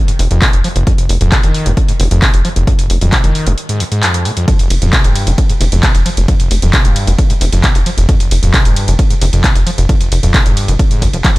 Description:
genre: driving peak-time techno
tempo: 133 BPM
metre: 4/4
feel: straight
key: F minor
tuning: A4 = 441 Hz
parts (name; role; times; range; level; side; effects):
- screaming distorted acid line; riff; 0.1-11.4 s; F1 to F3; -17 LUFS; equal; distortion, chorus, cassette tape, sidechain pumping, diffuse ambient delay
- techno drum kit; drums; 0.1-11.4 s; handclaps, hi-hat, ride cymbal; -18 LUFS; equal; none
- tight sequencer bass; bass; 0.2-11.4 s; Eb1 to F1; -13 LUFS; equal; sidechain pumping
- electronic kick drum; drums; 0.4-11.3 s; none; -12 LUFS; equal; none
room: little or no reverb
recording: none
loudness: -9 LUFS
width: side -20 dB against mid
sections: 0.0-11.4 A section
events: break 3.6-4.5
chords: none

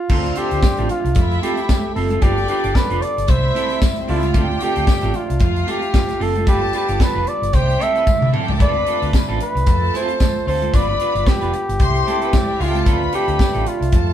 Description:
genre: disco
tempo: 113 BPM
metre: 4/4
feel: swing 56% on 16ths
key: D dorian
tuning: A4 = 440 Hz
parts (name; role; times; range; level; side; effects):
- breathy flugelhorn; melody; 0.0-14.1 s; F4 to E5; -21 LUFS; equal; tube saturation
- clear studio string section; second line; 0.1-14.1 s; B3 to C6; -27 LUFS; left 2 dB; none
- clean electric guitar; accompaniment; 0.1-14.1 s; C4 to D5; -27 LUFS; right 5 dB; none
- mellow French horn section; sustained chords; 0.1-14.1 s; C3 to A4; -30 LUFS; right 2 dB; none
- hollow-body short-scale fingered electric bass; bass; 0.1-14.1 s; F1 to C3; -22 LUFS; equal; none
- tight funk drum kit; drums; 0.1-14.1 s; crash cymbal, hi-hat, kick drum, snare drum, toms; -18 LUFS; equal; none
- congas; percussion; 0.6-14.1 s; none; -32 LUFS; equal; none
- tambourine; percussion; 0.6-13.5 s; none; -38 LUFS; left 3 dB; none
room: moderate studio reverb, RT60 0.9 s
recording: band playing live in one room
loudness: -15 LUFS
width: side -10 dB against mid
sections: 0.1-14.1 A section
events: drum fill 8.1-8.6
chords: 0.1 Dm7; 1.2 F; 2.2 G7; 3.3 C6; 4.3 Dm7; 5.4 F; 6.5 G7; 7.5 C6; 8.6 Dm7; 9.7 F; 10.7 G7; 11.8 C6; 12.9 Dm7

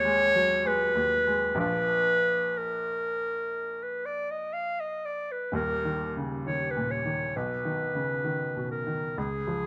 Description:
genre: classical, romantic duo for clarinet and grand piano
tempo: 59-68 BPM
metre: 4/4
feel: rubato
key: unclear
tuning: A4 = 438 Hz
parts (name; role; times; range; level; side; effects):
- clear clarinet; melody; 0.0-9.7 s; Ab4 to F5; -29 LUFS; equal; none
- clear baby grand piano; accompaniment; 0.0-9.7 s; Eb1 to F4; -35 LUFS; equal; none
room: light reverb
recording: close, detailed microphones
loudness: -29 LUFS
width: mono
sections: 0.0-9.7 A section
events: none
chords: 0.0 Abm; 1.6 Bb; 5.5 Eb5; 7.3 Bmaj9

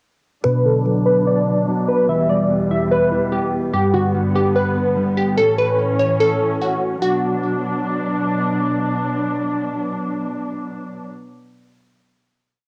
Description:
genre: hip hop, trap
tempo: 146 BPM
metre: 4/4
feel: half-time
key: B minor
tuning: A4 = 440 Hz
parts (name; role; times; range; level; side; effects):
- glassy wavetable pluck; melody; 0.4-8.2 s; F#4 to E5; -21 LUFS; equal; chorus, low-pass filter, cassette tape
- muted studio string section; sustained chords; 0.4-11.1 s; E2 to D4; -24 LUFS; equal; low-pass filter, cassette tape
- mellow electric guitar; accompaniment; 0.5-5.4 s; G2 to E5; -23 LUFS; equal; low-pass filter, cassette tape
room: moderate small room reverb, RT60 0.6 s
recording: home recording on cassette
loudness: -19 LUFS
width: mono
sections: 0.4-7.0 breakdown; 7.0-10.3 final chord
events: filter sweep 0.4-7.0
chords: 0.4 Bm; 2.1 Em; 3.7 G; 5.4 A; 7.0 Bm

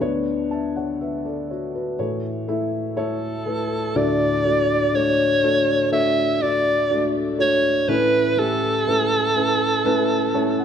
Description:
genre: pop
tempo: 61 BPM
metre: 4/4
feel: straight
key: D major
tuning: A4 = 440 Hz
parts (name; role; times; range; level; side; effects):
- felt-muted upright piano; accompaniment; 0.0-10.6 s; D2 to A5; -22 LUFS; left 2 dB; none
- bright alto saxophone; melody; 3.0-10.6 s; A4 to E5; -20 LUFS; right 1 dB; none
room: moderate recital hall reverb, RT60 1.6 s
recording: dark, warm production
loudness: -18 LUFS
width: side -8 dB against mid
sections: 0.0-4.0 A section; 4.0-10.6 B section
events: felt piano fill 9.9-10.6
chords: 0.0 Bmadd9/D; 2.0 A; 4.0 Dmaj7; 7.9 Aadd9

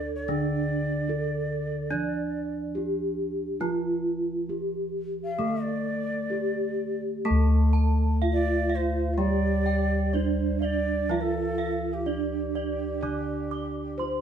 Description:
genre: Javanese gamelan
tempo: 62-76 BPM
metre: 4/4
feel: straight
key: D slendro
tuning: A4 = 442 Hz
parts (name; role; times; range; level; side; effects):
- gamelan-type bronze metallophone; melody; 0.0-14.2 s; D4 to D5; -30 LUFS; right 2 dB; none
- breathy hollow bansuri; second line; 0.0-14.2 s; G4 to F5; -33 LUFS; left 1 dB; none
- gamelan-type bronze metallophone; accompaniment; 0.0-14.2 s; D3 to D4; -31 LUFS; right 1 dB; none
- gamelan-type bossed gongs; bass; 0.0-14.2 s; D2 to A4; -29 LUFS; left 1 dB; none
- gamelan-type bronze metallophone; arpeggios; 7.3-14.2 s; D5 to D6; -34 LUFS; right 2 dB; none
room: moderate stone room reverb, RT60 1.1 s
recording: band playing live in one room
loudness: -25 LUFS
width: side -8 dB against mid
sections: 0.0-7.2 A section; 7.2-14.2 B section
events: none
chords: none

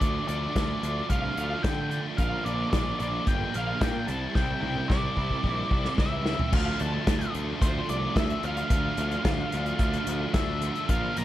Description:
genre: indie rock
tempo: 110 BPM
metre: 4/4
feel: straight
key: D minor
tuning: A4 = 440 Hz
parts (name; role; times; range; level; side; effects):
- octave-fuzz lead guitar; melody; 0.0-11.2 s; C5 to Bb5; -32 LUFS; left 1 dB; distortion, plate reverb, analog delay
- biting overdriven guitar; riff; 0.0-11.2 s; Bb2 to E4; -34 LUFS; right 7 dB; ensemble chorus
- scooped high-gain guitar; riff; 0.0-11.2 s; Bb2 to F4; -35 LUFS; left 6 dB; distortion
- fuzz picked electric bass; bass; 0.0-11.2 s; G1 to D3; -31 LUFS; equal; overdrive
- unplugged drum kit; drums; 0.0-11.2 s; crash cymbal, hi-hat, kick drum, snare drum, toms; -28 LUFS; equal; none
room: light reverb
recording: dark, warm production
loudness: -25 LUFS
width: side -13 dB against mid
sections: 0.0-6.5 A section; 6.5-11.2 B section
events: drum fill 4.4-6.5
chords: 0.0 Dm; 2.2 Bb; 4.1 Cadd9; 6.5 Dm

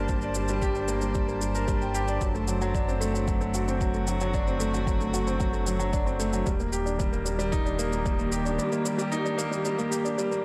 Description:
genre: piano and strings electronica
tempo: 113 BPM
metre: 4/4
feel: straight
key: unclear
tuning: A4 = 441 Hz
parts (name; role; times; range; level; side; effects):
- dark string quartet; sustained chords; 0.0-10.4 s; D3 to A5; -36 LUFS; equal; sidechain pumping
- warm grand piano; riff; 0.0-10.4 s; F#3 to G5; -31 LUFS; equal; delay
- round analog bass; bass; 0.0-8.6 s; Eb1 to G1; -33 LUFS; equal; sidechain pumping
- electronic kick drum; drums; 0.1-8.2 s; none; -32 LUFS; equal; none
- shaker; drums; 0.1-10.4 s; none; -40 LUFS; equal; none
room: light reverb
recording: none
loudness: -27 LUFS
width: mono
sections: 0.0-10.4 A section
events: none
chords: 0.0 Gm; 2.2 D7/F#; 6.5 Ebmaj7

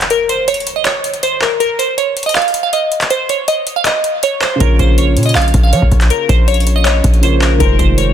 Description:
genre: hip hop, trap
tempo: 160 BPM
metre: 4/4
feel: half-time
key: Bb minor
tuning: A4 = 440 Hz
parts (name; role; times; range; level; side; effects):
- glassy wavetable pluck; melody; 0.0-8.1 s; Bb4 to F5; -15 LUFS; right 1 dB; chorus
- booming analog drum machine; drums; 0.0-8.1 s; handclaps, hi-hat, kick drum; -16 LUFS; equal; none
- impact and swell; sound effects; 0.0-0.1, 8.1 s; none; -36 LUFS; right 1 dB; none
- dark baby grand piano; accompaniment; 4.6-8.1 s; Db3 to Db5; -19 LUFS; right 2 dB; none
- hard-hitting 808-style bass; bass; 4.6-8.1 s; F1 to F3; -13 LUFS; equal; none
room: light reverb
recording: dense, heavily limited modern master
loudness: -11 LUFS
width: side -10 dB against mid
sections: 0.0-8.1 A section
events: break 0.0-4.6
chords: 0.0 N.C.; 4.6 Bbm; 7.6 Fm7

